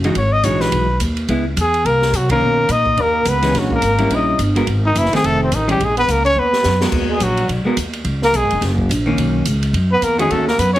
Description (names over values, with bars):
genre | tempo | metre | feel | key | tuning
jazz, small-group swing and bop | 213 BPM | 4/4 | swing 59% on 8ths | G# minor | A4 = 439 Hz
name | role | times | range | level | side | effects
vintage hollow-body jazz guitar | accompaniment | 0.0-10.8 s | Eb3 to A#4 | -20 LUFS | equal | none
upright bass | bass | 0.0-10.8 s | E1 to C3 | -19 LUFS | equal | none
open jazz drum kit | drums | 0.0-10.8 s | crash cymbal, hi-hat, kick drum, ride cymbal, snare drum | -26 LUFS | equal | none
clear trumpet | melody | 0.2-10.8 s | C4 to D#5 | -17 LUFS | left 1 dB | plate reverb
bright trombone | second line | 1.9-10.8 s | C3 to D#4 | -23 LUFS | right 4 dB | none
room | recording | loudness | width
moderate studio reverb, RT60 0.7 s | heavily compressed radio sound | -14 LUFS | side -14 dB against mid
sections
0.0-6.9 A section; 6.9-10.8 B section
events
band accent 2.3; drum fill 6.4-6.9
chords
0.2 Emaj9; 1.3 C#m7; 1.9 Cm7b5; 2.4 Bmaj9; 3.5 A#m7b5; 4.1 D#7b9; 4.7 G#5; 5.2 F7; 5.8 A#m7; 6.4 D#m; 6.9 G#m9; 8.1 C#m7; 8.6 F#6; 9.2 Bmaj9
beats
| 0.16 0.44 0.72 1.00 | 1.29 1.57 1.85 2.13 | 2.42 2.70 2.98 3.26 | 3.54 3.83 4.11 4.39 | 4.67 4.95 5.24 5.52 | 5.80 6.08 6.36 6.64 | 6.93 7.21 7.49 7.77 | 8.05 8.33 8.62 8.90 | 9.18 9.46 9.74 10.02 | 10.30 10.59